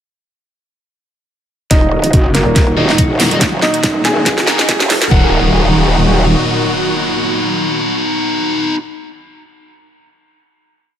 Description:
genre	heavy wobble dubstep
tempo	141 BPM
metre	4/4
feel	swing 55% on 16ths, half-time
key	Eb phrygian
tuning	A4 = 440 Hz
part	warm grand piano	melody	1.7-8.7 s	Bb3 to Ab5	-20 LUFS	right 1 dB	dub echo
part	supersaw chords	sustained chords	1.7-8.7 s	Bb2 to Gb4	-20 LUFS	right 1 dB	phaser, vintage 12-bit sampler grit, sidechain pumping, low-pass filter
part	growl bass	bass	1.7-6.3 s	Eb1 to Db2	-15 LUFS	equal	chorus, overdrive
part	dubstep drum kit	drums	1.7-5.1 s	hi-hat, snare drum	-15 LUFS	equal	high-pass filter on snare, high-pass filter on hats
part	electronic kick drum	drums	1.7-5.2 s	none	-13 LUFS	equal	none
part	riser and impact	sound effects	4.0-8.8 s	none	-23 LUFS	right 1 dB	none
part	metallic wobble bass	bass	2.1-4.2 s	Eb1 to Gb1	-15 LUFS	equal	distortion, chorus, overdrive
part	thick fuzz guitar	stabs	2.8-8.7 s	Eb4 to Bb4	-17 LUFS	left 2 dB	distortion, dub echo
room	light reverb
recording	high-pass filter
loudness	-11 LUFS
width	side -9 dB against mid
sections	1.7-5.1 build; 5.1-8.5 final chord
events	build-up 1.7-5.1; drum fill 1.7-5.1; filter sweep on supersaw synth 1.7-5.1; filter sweep 1.7-5.1; riser 4.0-5.1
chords	1.7 Ebm

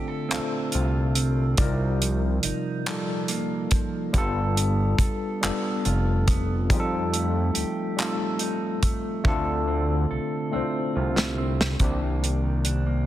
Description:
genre	slow six-eight R&B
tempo	47 BPM (dotted quarters)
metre	6/8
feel	straight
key	C dorian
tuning	A4 = 441 Hz
part	mellow electric guitar	second line	0.0-13.1 s	C3 to A4	-31 LUFS	right 7 dB	spring reverb
part	tine electric piano	accompaniment	0.0-13.1 s	Eb3 to D5	-28 LUFS	left 3 dB	medium stereo tremolo
part	fat analog bass	bass	0.3-13.1 s	F1 to F2	-25 LUFS	equal	none
part	warm soul drum kit	drums	0.3-12.8 s	handclaps, hi-hat, kick drum, snare drum	-25 LUFS	equal	none
room	light reverb, studio reverb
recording	dense, heavily limited modern master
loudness	-22 LUFS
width	side -13 dB against mid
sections	0.0-11.8 A section; 11.8-13.1 B section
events	drum fill 9.2-11.8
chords	0.0 Dm7; 1.6 Cm11; 4.1 G9; 6.7 F9; 9.2 Dm7; 11.8 Cm9

